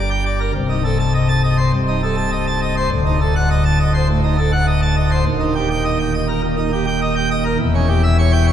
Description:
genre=classical, organ toccata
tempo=102 BPM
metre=4/4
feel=straight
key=unclear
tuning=A4 = 439 Hz
part: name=pipe organ, plenum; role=solo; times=0.0-8.5 s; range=C1 to A5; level=-15 LUFS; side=equal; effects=none
room=wet church reverb, RT60 3.5 s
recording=minimal, uncompressed stereo recording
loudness=-15 LUFS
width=side -10 dB against mid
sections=0.0-8.5 A section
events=none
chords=0.0 Gm; 0.5 Adim/C; 2.9 D7b9; 5.3 Eb; 7.6 C#dim/E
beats=| 0.55 1.14 1.73 2.32 | 2.91 3.50 4.09 4.67 | 5.26 5.85 6.43 7.01 | 7.60 8.18

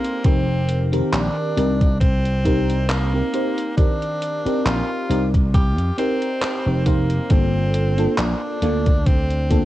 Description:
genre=vaporwave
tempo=68 BPM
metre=4/4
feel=swing 55% on 16ths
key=unclear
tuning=A4 = 443 Hz
part: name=edgy tenor saxophone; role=melody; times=0.0-9.7 s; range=Bb3 to G4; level=-26 LUFS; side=equal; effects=vintage 12-bit sampler grit, tape echo
part: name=FM electric piano with soft pad layer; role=accompaniment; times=0.0-9.7 s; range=Eb3 to C5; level=-23 LUFS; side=equal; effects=wide subtle chorus
part: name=gated 80s digital drum machine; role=drums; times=0.0-9.7 s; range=handclaps, hi-hat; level=-27 LUFS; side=equal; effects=gated reverb, vintage 12-bit sampler grit, small room ambience
part: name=vintage slap bass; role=bass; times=0.2-9.7 s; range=F1 to F2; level=-20 LUFS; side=equal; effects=none
part: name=electronic kick drum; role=drums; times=0.2-9.7 s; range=none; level=-18 LUFS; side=equal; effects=vintage 12-bit sampler grit, small room ambience
room=digital ambience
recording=worn, warbling old tape, cassette tape, warbly pitch drift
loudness=-17 LUFS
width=side -15 dB against mid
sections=0.0-9.7 A section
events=none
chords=0.0 F7sus4; 7.3 Gm9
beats=| 0.25 1.13 2.01 2.89 | 3.78 4.66 5.54 6.42 | 7.31 8.19 9.07

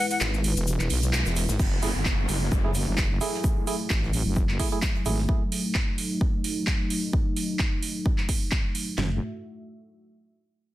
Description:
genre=bass house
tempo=130 BPM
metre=4/4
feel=swing 55% on 16ths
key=F# dorian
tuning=A4 = 438 Hz
part: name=dark analog pad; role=sustained chords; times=0.0-9.2 s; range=F#3 to E5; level=-33 LUFS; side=left 1 dB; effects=chorus, sidechain pumping
part: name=house drum kit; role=drums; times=0.1-8.8 s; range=crash cymbal, handclaps, hi-hat, shaker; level=-30 LUFS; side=right 2 dB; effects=studio reverb
part: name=wobble bass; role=bass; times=0.2-5.3, 9.0-9.2 s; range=E1 to B1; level=-26 LUFS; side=equal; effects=chorus, sidechain pumping
part: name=unplugged drum kit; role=drums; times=0.2-5.3 s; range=hi-hat, shaker, snare drum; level=-39 LUFS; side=right 1 dB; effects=high-pass filter on hats, studio reverb, high-pass filter on snare, high-pass filter on perc, high-pass filter on room
part: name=house drum kit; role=drums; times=1.6-9.1 s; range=handclaps, kick drum, snare drum, toms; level=-26 LUFS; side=equal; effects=studio reverb
part: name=downlifter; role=sound effects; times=1.6-5.3 s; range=none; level=-36 LUFS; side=equal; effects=none
part: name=percussive organ stab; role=stabs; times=1.8-5.2 s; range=A3 to G#4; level=-32 LUFS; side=right 5 dB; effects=chorus, sidechain pumping, digital delay
room=light reverb, studio ambience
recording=dense, heavily limited modern master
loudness=-23 LUFS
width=side -15 dB against mid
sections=0.0-1.6 A section; 1.6-9.0 B section; 9.0-10.7 C section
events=break 0.0-1.6; drop 0.0-1.6; band accent 1.1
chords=0.0 E; 1.6 F#m7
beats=0.21 0.67 1.13 | 1.59 2.06 2.52 2.98 | 3.44 3.90 4.36 4.83 | 5.29 5.75 6.21 6.67 | 7.13 7.59 8.06 8.52 | 8.98

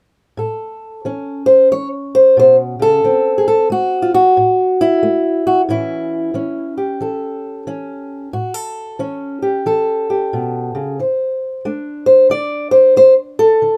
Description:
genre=acoustic country blues, solo or duo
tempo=91 BPM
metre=4/4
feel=swing 64% on 8ths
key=A mixolydian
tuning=A4 = 439 Hz
part: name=fingerpicked old ladder-braced acoustic guitar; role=solo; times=0.4-13.8 s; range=A2 to D5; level=-15 LUFS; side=equal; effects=none
room=light reverb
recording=close, detailed microphones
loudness=-14 LUFS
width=mono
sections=0.4-13.8 A section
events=none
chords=0.4 A; 3.0 D7; 5.7 A7; 11.0 D7(no3)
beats=| 0.38 1.05 1.71 2.38 | 3.04 3.71 4.37 5.03 | 5.70 6.36 7.02 7.68 | 8.34 9.00 9.66 10.32 | 10.98 11.64 12.31 12.97 | 13.63

